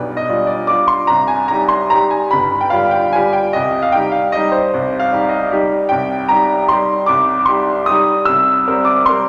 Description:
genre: classical, piano waltz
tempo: 151 BPM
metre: 3/4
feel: uneven beats, rubato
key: C minor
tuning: A4 = 440 Hz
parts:
  - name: bright grand piano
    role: solo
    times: 0.0-9.3 s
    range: G1 to E6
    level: -15 LUFS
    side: equal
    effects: none
room: wet concert hall reverb, RT60 2.2 s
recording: none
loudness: -15 LUFS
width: mono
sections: 0.0-9.3 A section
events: none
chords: 0.0 G7/B; 1.1 Cm; 2.3 G7b9; 3.5 Cm; 8.3 C7

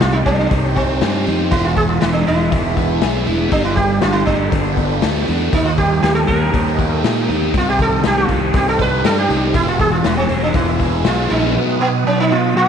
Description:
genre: psychedelic rock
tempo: 120 BPM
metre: 4/4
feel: straight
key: unclear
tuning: A4 = 441 Hz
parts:
  - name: sitar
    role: melody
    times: 0.0-12.7 s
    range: B3 to B4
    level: -19 LUFS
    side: right 2 dB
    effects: tape echo
  - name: tonewheel organ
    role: sustained chords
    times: 0.0-12.7 s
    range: G4 to E6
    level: -29 LUFS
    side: right 9 dB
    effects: slow rotary speaker, chorus vibrato
  - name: thick fuzz guitar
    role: riff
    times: 0.0-12.7 s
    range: E2 to A4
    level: -19 LUFS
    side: right 1 dB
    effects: distortion, phaser
  - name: fuzz fingered electric bass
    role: bass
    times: 0.0-11.6 s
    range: E1 to Bb2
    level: -20 LUFS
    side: equal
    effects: overdrive
  - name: raw garage drum kit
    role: drums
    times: 0.0-11.4 s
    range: hi-hat, kick drum, snare drum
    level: -21 LUFS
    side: left 4 dB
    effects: none
  - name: congas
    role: percussion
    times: 0.1-11.5 s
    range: none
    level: -32 LUFS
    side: left 13 dB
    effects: none
room: moderate echo chamber reverb, RT60 1.7 s, small room ambience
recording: 1960s-style stereo with parts hard left and right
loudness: -14 LUFS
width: side -7 dB against mid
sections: 0.0-11.6 A section; 11.6-12.7 B section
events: none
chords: 0.0 Cm; 1.5 E; 3.5 Gadd9; 5.5 Eb; 7.5 Cm; 9.5 E; 11.6 B

